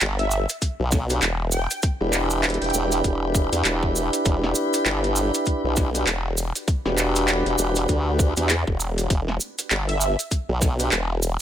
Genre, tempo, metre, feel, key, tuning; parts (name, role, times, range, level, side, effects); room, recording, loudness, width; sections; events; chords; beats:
glitch hop; 99 BPM; 4/4; swing 59% on 16ths; E minor; A4 = 440 Hz
formant-sweep wobble bass; bass; 0.0-11.4 s; E1 to E2; -24 LUFS; equal; chorus, tube saturation
drum and bass drum kit; drums; 0.0-11.1 s; handclaps, hi-hat, snare drum; -26 LUFS; equal
cabasa; percussion; 0.0-11.4 s; -28 LUFS; right 3 dB
plucky unison lead; melody; 0.2-3.0, 9.9-10.1 s; E5 to G5; -30 LUFS; right 2 dB; ensemble chorus, ping-pong delay
electronic kick drum; drums; 0.6-10.8 s; -22 LUFS; equal
mellow tonewheel organ; stabs; 1.1-10.9 s; D4 to B4; -25 LUFS; equal; slow rotary speaker, sidechain pumping, ping-pong delay
digital ambience; -20 LUFS; side -10 dB against mid
0.0-11.4 A section
0.0 Em9
0.01 0.62 1.22 | 1.83 2.44 3.04 3.65 | 4.25 4.86 5.47 6.07 | 6.68 7.28 7.89 8.50 | 9.10 9.71 10.31 10.92